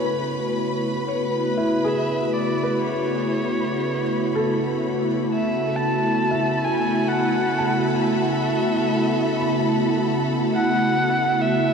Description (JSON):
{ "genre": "ambient", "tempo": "69 BPM", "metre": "3/4", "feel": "straight", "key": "A major", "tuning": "A4 = 439 Hz", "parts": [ { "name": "airy breathy pad", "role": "sustained chords", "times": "0.0-11.7 s", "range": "C#3 to F#4", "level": "-22 LUFS", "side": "equal", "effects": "chorus" }, { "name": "felt-muted upright piano", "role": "arpeggios", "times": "0.0-11.7 s", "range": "E4 to B5", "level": "-30 LUFS", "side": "left 1 dB", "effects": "ping-pong delay" }, { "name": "rich studio violin section", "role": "texture", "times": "0.0-11.7 s", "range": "A4 to B5", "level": "-29 LUFS", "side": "left 1 dB", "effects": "none" }, { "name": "dark electric violin", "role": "melody", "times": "1.4-11.7 s", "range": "B4 to A5", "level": "-26 LUFS", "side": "equal", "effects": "ping-pong delay" } ], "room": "wet huge ambient reverb, RT60 8.9 s", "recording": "dark, warm production", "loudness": "-19 LUFS", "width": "side -6 dB against mid", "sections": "0.0-11.7 A section", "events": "fade-in on electric violin 0.0-11.7", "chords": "0.0 A69", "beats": "| 0.10 0.97 1.84 | 2.71 3.58 4.45 | 5.32 6.19 7.06 | 7.93 8.80 9.67 | 10.54 11.41" }